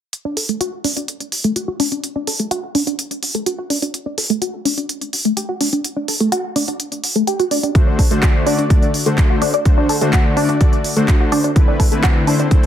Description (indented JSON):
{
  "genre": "progressive house",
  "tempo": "126 BPM",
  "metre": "4/4",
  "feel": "straight",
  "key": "D mixolydian",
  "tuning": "A4 = 440 Hz",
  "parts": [
    { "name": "house drum kit", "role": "drums", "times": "0.1-12.7 s", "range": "handclaps, hi-hat", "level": "-22 LUFS", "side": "right 1 dB", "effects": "none" },
    { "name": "tight sequenced synth", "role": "arpeggios", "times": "0.3-12.5 s", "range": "A3 to A4", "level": "-20 LUFS", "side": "equal", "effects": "chorus, phaser, sidechain pumping, tape echo" },
    { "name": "soft supersaw", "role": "stabs", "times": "7.7-12.6 s", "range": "D3 to D5", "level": "-18 LUFS", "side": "left 2 dB", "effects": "sidechain pumping, tape echo" },
    { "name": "electronic kick drum", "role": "drums", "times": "7.8-12.6 s", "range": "none", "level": "-13 LUFS", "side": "equal", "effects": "none" }
  ],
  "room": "light reverb, digital ambience",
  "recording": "dense, heavily limited modern master",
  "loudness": "-15 LUFS",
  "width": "side -10 dB against mid",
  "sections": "0.1-12.7 A section",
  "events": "filter sweep on synth arpeggio sound 0.1-12.7",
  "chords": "0.1 D; 3.9 Asus4; 7.8 D7; 11.6 Amadd9/D",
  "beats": "| 0.13 0.61 1.08 1.56 | 2.04 2.51 2.99 3.46 | 3.94 4.42 4.89 5.37 | 5.84 6.32 6.80 7.27 | 7.75 8.23 8.70 9.18 | 9.65 10.13 10.61 11.08 | 11.56 12.04 12.51"
}